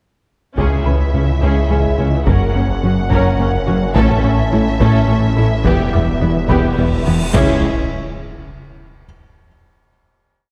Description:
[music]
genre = cinematic, hybrid orchestral and electronic film score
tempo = 71 BPM (dotted quarters)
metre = 6/8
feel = straight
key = C# minor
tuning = A4 = 440 Hz
[part]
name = warm symphonic violin section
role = melody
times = 0.6-7.7 s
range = E5 to F#5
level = -29 LUFS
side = equal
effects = none
[part]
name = dark symphonic violin section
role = second line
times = 0.6-7.7 s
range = B3 to A#4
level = -29 LUFS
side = equal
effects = none
[part]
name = rich symphonic viola section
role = accompaniment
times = 0.6-7.7 s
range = B3 to C#4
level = -26 LUFS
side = equal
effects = none
[part]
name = warm French horn section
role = sustained chords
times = 0.6-7.6 s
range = G3 to E4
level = -27 LUFS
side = equal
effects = none
[part]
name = string-like resonator pluck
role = arpeggios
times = 0.6-7.2 s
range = C#3 to E4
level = -31 LUFS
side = equal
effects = none
[part]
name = smooth gliding synth bass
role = riff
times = 0.6-7.2 s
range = C#2 to A3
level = -22 LUFS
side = equal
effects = none
[part]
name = rich symphonic cello section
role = bass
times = 0.6-7.7 s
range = C#2 to A2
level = -25 LUFS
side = equal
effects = none
[part]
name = snarling distorted saw bass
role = bass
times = 0.6-7.7 s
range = E1 to C#2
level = -23 LUFS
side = equal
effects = distortion
[part]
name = warm symphonic double bass section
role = bass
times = 0.6-7.7 s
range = E1 to C#2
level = -24 LUFS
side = equal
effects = none
[part]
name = solo taiko drums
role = drums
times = 0.6-8.4 s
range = none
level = -24 LUFS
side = equal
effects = none
[part]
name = warm concert grand piano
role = texture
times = 0.9-7.4 s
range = G#4 to B5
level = -32 LUFS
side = equal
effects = tape echo
[part]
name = cymbal swell and impact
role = sound effects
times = 6.8-9.0 s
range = none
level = -28 LUFS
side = equal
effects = none
[sound]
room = wet scoring stage reverb, RT60 2.0 s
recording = heard from further back in the room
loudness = -15 LUFS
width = mono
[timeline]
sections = 0.6-7.3 theme; 7.3-9.0 final chord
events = cymbal swell 6.8-7.3; impact 7.3-9.0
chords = 0.6 C#m; 2.3 F#; 4.0 A; 5.7 Em; 7.3 C#m

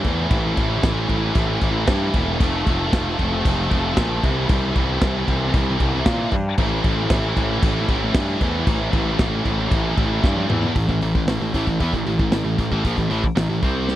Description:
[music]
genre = heavy metal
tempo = 115 BPM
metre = 4/4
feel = straight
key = A phrygian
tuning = A4 = 439 Hz
[part]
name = scooped high-gain guitar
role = riff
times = 0.0-14.0 s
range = A2 to C4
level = -22 LUFS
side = equal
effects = distortion
[part]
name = fuzz picked electric bass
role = bass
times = 0.0-14.0 s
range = E1 to Bb2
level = -23 LUFS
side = equal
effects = overdrive
[part]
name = modern studio drum kit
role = drums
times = 0.0-14.0 s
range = crash cymbal, hi-hat, kick drum, snare drum, toms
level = -22 LUFS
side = equal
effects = none
[sound]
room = little or no reverb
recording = dry, close 1970s-style studio recording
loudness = -18 LUFS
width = side -13 dB against mid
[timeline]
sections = 0.0-10.7 A section; 10.7-14.0 B section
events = drum fill 10.2-10.7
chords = 0.0 A5; 2.4 F; 4.2 C; 6.6 A5

